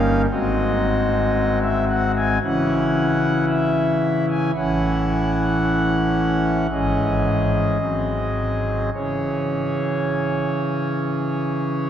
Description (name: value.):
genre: classical, chorale-style piece for pipe organ.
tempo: 53-57 BPM.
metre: 4/4.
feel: straight.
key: C# minor.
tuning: A4 = 440 Hz.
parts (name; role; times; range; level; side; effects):
pipe organ, foundations; solo; 0.0-11.9 s; G1 to G#5; -18 LUFS; equal; none.
room: wet cathedral reverb, RT60 5.1 s.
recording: none.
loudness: -18 LUFS.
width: side -10 dB against mid.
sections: 0.0-11.9 A section.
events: none.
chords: 0.3 G#7; 2.4 C#m; 4.5 A; 6.7 C#m/G#; 7.8 G#7; 8.9 C#m.